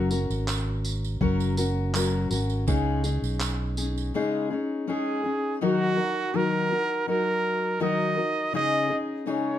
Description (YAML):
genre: acoustic pop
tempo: 82 BPM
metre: 4/4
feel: straight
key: Eb minor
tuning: A4 = 440 Hz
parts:
  - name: fingerpicked steel-string acoustic guitar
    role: accompaniment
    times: 0.0-9.6 s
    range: Db3 to Bb4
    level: -27 LUFS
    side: left 4 dB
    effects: none
  - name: fingered electric bass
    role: bass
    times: 0.0-4.1 s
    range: Gb1 to Db2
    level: -27 LUFS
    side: right 1 dB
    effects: none
  - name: dusty soul sampler-style drum kit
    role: drums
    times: 0.1-3.9 s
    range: handclaps, kick drum, tambourine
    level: -32 LUFS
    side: right 2 dB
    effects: none
  - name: tambourine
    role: percussion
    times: 0.1-4.1 s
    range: none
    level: -37 LUFS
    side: right 12 dB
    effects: none
  - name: breathy trumpet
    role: melody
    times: 4.9-9.6 s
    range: Gb4 to Eb5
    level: -26 LUFS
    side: right 3 dB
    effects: none
room: light reverb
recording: close, detailed microphones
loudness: -24 LUFS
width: side -11 dB against mid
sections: 0.0-5.6 A section; 5.6-9.6 B section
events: none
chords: 0.0 Gb; 2.7 Dbsus2; 5.6 Ebm; 8.5 Dbsus2